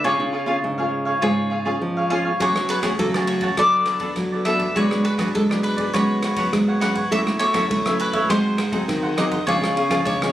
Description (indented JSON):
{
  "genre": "samba and choro",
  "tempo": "102 BPM",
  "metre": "4/4",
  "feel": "straight",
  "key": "unclear",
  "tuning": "A4 = 440 Hz",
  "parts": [
    { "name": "mandolin", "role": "second line", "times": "0.0-10.3 s", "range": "A4 to F#5", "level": "-24 LUFS", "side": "left 1 dB", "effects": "none" },
    { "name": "cavaquinho", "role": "accompaniment", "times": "0.0-10.3 s", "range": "D4 to A5", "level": "-24 LUFS", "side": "right 1 dB", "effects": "none" },
    { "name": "nylon-string guitar", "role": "accompaniment", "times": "0.0-10.3 s", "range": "G#2 to A4", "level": "-27 LUFS", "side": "left 2 dB", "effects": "none" },
    { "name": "nylon-string guitar", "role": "bass", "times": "0.0-10.3 s", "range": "G#2 to A3", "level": "-23 LUFS", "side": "right 1 dB", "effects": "none" },
    { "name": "open jazz drum kit", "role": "drums", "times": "2.4-10.3 s", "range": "kick drum, ride cymbal, rim click", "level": "-29 LUFS", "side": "equal", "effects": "none" }
  ],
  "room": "light reverb",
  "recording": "recorded on a phone in the room, studio ambience, compression",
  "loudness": "-18 LUFS",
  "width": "side -13 dB against mid",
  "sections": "0.0-10.3 A section",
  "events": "mandolin solo 0.0-10.3",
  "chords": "0.0 C#; 2.4 F#madd9; 3.6 Bm7/F#; 4.8 G#m7b5; 5.9 C#7sus4/G#; 7.1 F#m7/A; 8.3 G#7; 9.5 C#"
}